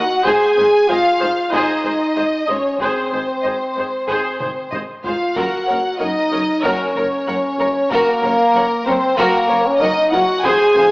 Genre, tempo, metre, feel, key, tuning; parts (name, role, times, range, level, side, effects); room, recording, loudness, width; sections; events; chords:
cinematic, epic orchestral film score; 94 BPM; 4/4; straight; A4 = 441 Hz
warm symphonic violin section; melody; 0.0-10.9 s; Bb4 to Ab5; -22 LUFS; equal
warm symphonic violin section; second line; 0.0-10.9 s; Gb4 to Gb5; -24 LUFS; equal
rich symphonic viola section; accompaniment; 0.0-10.8 s; Ab4 to Eb5; -23 LUFS; equal
warm French horn section; sustained chords; 0.0-10.9 s; Bb3 to Ab4; -17 LUFS; equal
warm symphonic cello section; bass; 0.0-10.8 s; F2 to Ab2; -31 LUFS; equal
rich symphonic double bass section; bass; 0.3-10.8 s; F1 to Ab1; -32 LUFS; equal
solo taiko drums; drums; 0.3-10.9 s; -36 LUFS; equal
moderate recital hall reverb, RT60 1.6 s; AM radio sound; -14 LUFS; side -24 dB against mid
0.0-10.9 A section
drum fill 4.4-5.4
0.3 Ab; 5.4 Gb